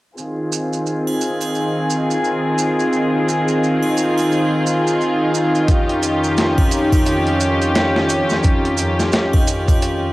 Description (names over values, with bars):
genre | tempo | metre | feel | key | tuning
trip hop | 87 BPM | 4/4 | swing 60% on 16ths | F minor | A4 = 439 Hz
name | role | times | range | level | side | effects
dark studio string section | sustained chords | 0.2-10.1 s | F2 to Ab4 | -17 LUFS | equal | low-pass filter, cassette tape
maracas and triangle | percussion | 0.2-10.0 s | none | -29 LUFS | right 7 dB | none
bowed-like drone | texture | 1.2-10.1 s | Eb4 | -26 LUFS | left 1 dB | built-in reverb, phaser, cassette tape
dusty soul sampler-style drum kit | drums | 5.7-10.0 s | hi-hat, kick drum, snare drum | -17 LUFS | equal | overdrive, cassette tape
room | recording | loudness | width
light reverb | home recording on cassette | -15 LUFS | side -18 dB against mid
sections
0.2-10.1 A section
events
filter sweep on string section 0.2-10.1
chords
0.2 Fm7; 5.7 Eb9/F